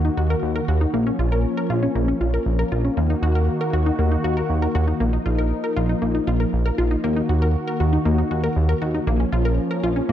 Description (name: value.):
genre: synth-pop.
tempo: 118 BPM.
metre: 4/4.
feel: straight.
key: Eb minor.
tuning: A4 = 440 Hz.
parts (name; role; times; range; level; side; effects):
warm analog pad; sustained chords; 0.0-10.1 s; Eb3 to Gb4; -25 LUFS; left 1 dB; chorus.
wide unison pluck; arpeggios; 0.0-10.1 s; Bb3 to Bb4; -25 LUFS; left 2 dB; slapback echo.
chorused synth bass; bass; 0.0-10.1 s; Bb1 to Eb2; -21 LUFS; right 1 dB; none.
room: light reverb, digital ambience.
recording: none.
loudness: -19 LUFS.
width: side -11 dB against mid.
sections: 0.0-10.1 A section.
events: none.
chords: 0.0 Ebm; 0.9 Bbm; 3.0 Ebm; 5.0 Bbsus4; 7.0 Ebm; 9.1 Bbm.